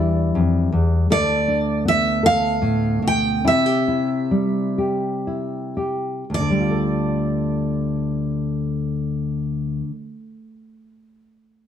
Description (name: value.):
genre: acoustic folk-pop ballad.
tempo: 54-80 BPM.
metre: 3/4.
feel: straight.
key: D dorian.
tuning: A4 = 440 Hz.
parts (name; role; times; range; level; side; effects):
picked steel-string acoustic guitar; melody; 0.0-9.4 s; D5 to G5; -22 LUFS; right 2 dB; plate reverb.
nylon-string guitar; accompaniment; 0.0-10.2 s; D2 to A4; -20 LUFS; left 1 dB; none.
room: moderate large studio reverb, RT60 1.0 s.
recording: dark, warm production.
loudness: -18 LUFS.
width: side -9 dB against mid.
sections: 0.0-6.3 A section; 6.3-9.6 B section.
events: slowing down 1.1-6.3.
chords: 0.0 Em7; 1.1 Gadd9/D; 3.4 C; 6.3 Dm.